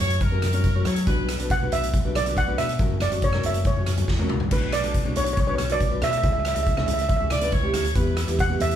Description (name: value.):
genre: calypso.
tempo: 139 BPM.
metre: 4/4.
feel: straight.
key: B minor.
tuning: A4 = 440 Hz.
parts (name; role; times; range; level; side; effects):
steel pan; melody; 0.0-8.8 s; B4 to F#5; -26 LUFS; right 1 dB; none.
clear horn section; second line; 0.0-1.4, 7.3-8.3 s; A#4 to D5; -29 LUFS; equal; none.
nylon-string guitar; accompaniment; 0.0-8.8 s; B3 to C#5; -31 LUFS; left 1 dB; none.
overdriven fingered electric bass; bass; 0.0-8.8 s; F#1 to F#3; -26 LUFS; equal; none.
street-band drum kit; drums; 0.1-8.8 s; crash cymbal, hi-hat, kick drum, rim click, snare drum, toms; -25 LUFS; equal; none.
congas; percussion; 0.4-8.7 s; none; -34 LUFS; right 2 dB; none.
room: light reverb.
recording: band playing live in one room.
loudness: -20 LUFS.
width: side -10 dB against mid.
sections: 0.0-8.8 A section.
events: drum fill 4.1-4.5.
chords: 0.0 F#; 1.1 Bm; 2.8 F#7; 4.5 Bmadd9; 6.2 C#m; 8.0 Em.